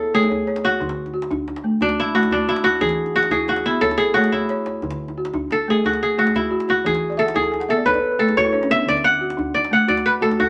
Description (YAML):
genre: west african traditional, West African string and xylophone music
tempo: 119 BPM (dotted quarters)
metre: 12/8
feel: straight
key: D lydian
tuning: A4 = 439 Hz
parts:
  - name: kora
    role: melody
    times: 0.0-10.5 s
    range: D4 to F#5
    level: -21 LUFS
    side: equal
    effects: none
  - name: balafon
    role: arpeggios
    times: 0.0-10.5 s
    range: D3 to A5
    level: -25 LUFS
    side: equal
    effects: none
  - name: djembe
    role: percussion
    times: 0.2-10.5 s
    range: none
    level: -35 LUFS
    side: equal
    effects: none
room: moderate studio reverb, RT60 0.8 s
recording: none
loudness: -20 LUFS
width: mono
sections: 0.0-10.5 A section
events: kora solo 0.0-10.5; drum fill 4.3-4.8; balafon fill 7.1-8.9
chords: 0.0 A; 0.8 D; 2.8 E; 3.8 A; 4.8 D; 6.8 E; 7.9 A; 8.9 D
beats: 0.30 | 0.80 1.31 1.81 2.31 | 2.82 3.32 3.82 4.33 | 4.83 5.34 5.84 6.34 | 6.85 7.35 7.86 8.36 | 8.87 9.38 9.88 10.39